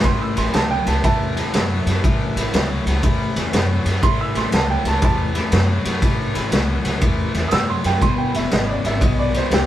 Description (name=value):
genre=electric blues shuffle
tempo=120 BPM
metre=4/4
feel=swing 66% on 8ths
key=A mixolydian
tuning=A4 = 440 Hz
part: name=cranked stack guitar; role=riff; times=0.0-9.7 s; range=E2 to F#3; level=-24 LUFS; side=left 4 dB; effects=overdrive, harmonic tremolo
part: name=upright bass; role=bass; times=0.0-9.7 s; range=E1 to F#2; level=-23 LUFS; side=equal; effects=none
part: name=raw garage drum kit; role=drums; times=0.0-9.7 s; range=kick drum, ride cymbal, snare drum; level=-19 LUFS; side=equal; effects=none
part: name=clear upright piano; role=second line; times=0.1-9.7 s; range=G4 to E6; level=-24 LUFS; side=right 4 dB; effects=none
room=light reverb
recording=band playing live in one room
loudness=-16 LUFS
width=side -12 dB against mid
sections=0.0-9.7 A section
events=upright piano solo 0.0-9.7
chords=0.0 A; 8.0 E